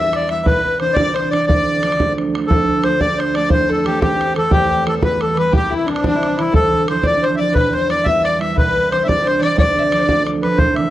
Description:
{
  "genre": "celtic folk, Celtic jig",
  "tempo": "119 BPM (dotted quarters)",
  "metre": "6/8",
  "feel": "straight",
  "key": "D dorian",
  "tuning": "A4 = 440 Hz",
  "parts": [
    { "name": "accordion", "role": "melody", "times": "0.0-10.9 s", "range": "D4 to E5", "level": "-18 LUFS", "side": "left 1 dB", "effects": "none" },
    { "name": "dark fiddle", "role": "second line", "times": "0.0-10.3 s", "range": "D4 to E5", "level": "-22 LUFS", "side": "left 6 dB", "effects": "none" },
    { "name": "concert harp", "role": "accompaniment", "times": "0.0-10.9 s", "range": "C2 to E4", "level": "-20 LUFS", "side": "right 4 dB", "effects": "none" },
    { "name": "bodhran", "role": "percussion", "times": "0.1-10.8 s", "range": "none", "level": "-20 LUFS", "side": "right 1 dB", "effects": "none" }
  ],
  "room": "light reverb",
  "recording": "dry, close 1970s-style studio recording",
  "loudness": "-14 LUFS",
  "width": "side -14 dB against mid",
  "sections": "0.0-2.5 A section; 2.5-10.6 A section",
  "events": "none",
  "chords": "0.5 Cadd9; 1.5 Dm; 3.5 C6/E; 4.5 Em; 5.5 C; 6.5 Dmadd9; 7.6 Em; 8.6 Cadd9; 9.6 Dm"
}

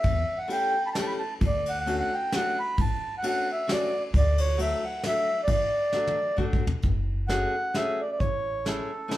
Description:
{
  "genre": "musette waltz",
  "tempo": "133 BPM",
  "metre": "3/4",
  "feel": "swing 54% on 8ths",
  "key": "D major",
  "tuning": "A4 = 440 Hz",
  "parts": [
    { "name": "mellow accordion", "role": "melody", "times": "0.0-9.2 s", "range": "A4 to B5", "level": "-27 LUFS", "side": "equal", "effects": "none" },
    { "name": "upright bass", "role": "bass", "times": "0.0-8.8 s", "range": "F#1 to E2", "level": "-28 LUFS", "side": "equal", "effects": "none" },
    { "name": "soft brush drum kit", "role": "drums", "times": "0.0-9.2 s", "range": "hi-hat, kick drum, ride cymbal, snare drum, toms", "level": "-30 LUFS", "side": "equal", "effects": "none" },
    { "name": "fingerpicked steel-string acoustic guitar", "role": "accompaniment", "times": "0.5-9.2 s", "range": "F#3 to G#4", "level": "-32 LUFS", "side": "left 2 dB", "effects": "none" }
  ],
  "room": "moderate large studio reverb, RT60 0.9 s",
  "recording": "band playing live in one room",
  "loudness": "-24 LUFS",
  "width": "side -14 dB against mid",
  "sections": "0.0-6.8 A section; 6.8-9.2 B section",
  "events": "drum fill 5.9-6.8",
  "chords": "0.0 A7; 1.4 Dmaj7; 4.1 D; 6.8 F#madd9; 8.2 Amaj7"
}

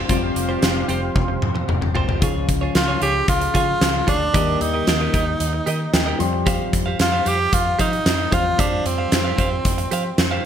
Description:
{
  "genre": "1980s-style pop",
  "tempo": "113 BPM",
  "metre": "4/4",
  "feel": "straight",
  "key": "unclear",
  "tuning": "A4 = 443 Hz",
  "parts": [
    { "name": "dark grand piano", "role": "accompaniment", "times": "0.0-10.5 s", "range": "C3 to C6", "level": "-26 LUFS", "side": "left 4 dB", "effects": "wide subtle chorus" },
    { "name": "brassy analog pad", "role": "sustained chords", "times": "0.0-2.2 s", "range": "G4 to C6", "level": "-29 LUFS", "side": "equal", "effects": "chorus" },
    { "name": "direct-recorded clean electric guitar", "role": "riff", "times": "0.1-10.4 s", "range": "F4 to F5", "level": "-28 LUFS", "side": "right 5 dB", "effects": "lush chorus" },
    { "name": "vintage muted fingered electric bass", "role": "bass", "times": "0.1-10.4 s", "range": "F1 to F3", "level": "-25 LUFS", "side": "equal", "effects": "none" },
    { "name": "huge arena drum kit", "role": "drums", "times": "0.1-10.3 s", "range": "hi-hat, kick drum, snare drum, toms", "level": "-21 LUFS", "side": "equal", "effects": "none" },
    { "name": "clear tenor saxophone", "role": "melody", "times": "2.8-10.5 s", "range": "C4 to G4", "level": "-22 LUFS", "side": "right 2 dB", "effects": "none" }
  ],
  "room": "moderate plate reverb, RT60 1.4 s, small room ambience",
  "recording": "bright 1980s-style digital production",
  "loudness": "-17 LUFS",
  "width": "side -9 dB against mid",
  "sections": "0.1-2.2 A section; 2.2-10.5 B section",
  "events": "drum fill 1.2-2.2; grand piano fill 5.4-6.5",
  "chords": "0.1 Fsus2; 2.2 Db; 4.3 Eb; 6.2 Fsus2"
}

